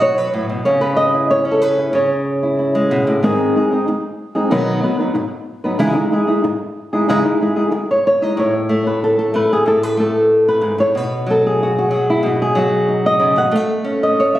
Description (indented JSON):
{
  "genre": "flamenco",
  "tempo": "186 BPM",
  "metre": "4/4",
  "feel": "straight",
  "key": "C# minor",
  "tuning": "A4 = 440 Hz",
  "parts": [
    { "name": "flamenco guitar", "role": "solo", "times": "0.0-14.4 s", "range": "G#2 to F#5", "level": "-14 LUFS", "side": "equal", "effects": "slapback echo" }
  ],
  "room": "moderate large studio reverb, RT60 1.4 s",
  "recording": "recorded on a phone in the room, studio reverb, compression",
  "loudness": "-14 LUFS",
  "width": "side -14 dB against mid",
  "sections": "0.0-3.2 A section; 3.2-8.4 B section; 8.4-14.4 C section",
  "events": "none",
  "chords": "0.0 B5; 0.7 C#m; 3.2 G#; 4.5 B; 5.8 C#madd9; 8.4 Aadd9; 10.9 B; 13.5 A"
}